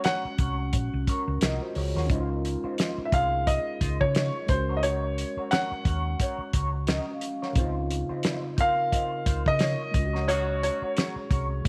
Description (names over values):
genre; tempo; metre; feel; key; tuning
lush 1970s-style soul; 88 BPM; 4/4; swing 58% on 16ths; unclear; A4 = 441 Hz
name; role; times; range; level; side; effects
warm concert grand piano; melody; 0.0-11.7 s; C5 to Gb5; -30 LUFS; equal; none
mellow tine electric piano; accompaniment; 0.0-11.7 s; Db3 to Db5; -37 LUFS; equal; none
electric guitar at the edge of break-up; riff; 0.0-11.7 s; Eb4 to Eb5; -39 LUFS; equal; wah
warm soul drum kit; drums; 0.0-11.7 s; hi-hat, kick drum, snare drum; -30 LUFS; equal; none
vibraphone with medium mallets; texture; 0.0-11.7 s; Db4 to F5; -42 LUFS; equal; none
hollow-body short-scale fingered electric bass; bass; 0.2-11.7 s; Bb1 to Db3; -32 LUFS; equal; none
clear horn section; stabs; 10.3-10.8 s; Gb3 to Gb4; -40 LUFS; equal; slapback echo
room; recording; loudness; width
light reverb, small room ambience; none; -27 LUFS; mono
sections
0.0-11.7 A section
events
band accent 10.3-11.7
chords
0.0 Ab9sus4; 2.1 Dbmaj9; 4.5 Ab9sus4/Db; 7.6 Dbmaj9; 9.9 Ab9sus4/Db